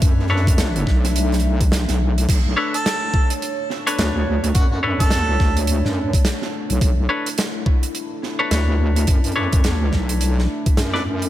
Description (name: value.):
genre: glitch hop.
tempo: 106 BPM.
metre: 4/4.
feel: swing 60% on 16ths.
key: B minor.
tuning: A4 = 442 Hz.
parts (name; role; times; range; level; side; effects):
dark analog pad; sustained chords; 0.0-11.3 s; A3 to E5; -28 LUFS; equal; chorus, phaser, vintage 12-bit sampler grit, sidechain pumping.
clean electric guitar; stabs; 0.0-11.0 s; D4 to D5; -26 LUFS; left 1 dB; sidechain pumping, tape echo.
wobble bass; bass; 0.0-11.3 s; B1 to F#2; -19 LUFS; equal; chorus, tube saturation.
electronic kick drum; drums; 0.0-10.8 s; none; -17 LUFS; equal; overdrive.
huge arena drum kit; drums; 0.0-11.3 s; crash cymbal, hi-hat, snare drum; -26 LUFS; right 2 dB; none.
warm harmonica; melody; 2.7-5.6 s; F#4 to A4; -26 LUFS; right 2 dB; tape echo.
room: studio reverb.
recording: none.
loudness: -17 LUFS.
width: side -13 dB against mid.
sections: 0.0-11.3 A section.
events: none.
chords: 0.0 Bm9.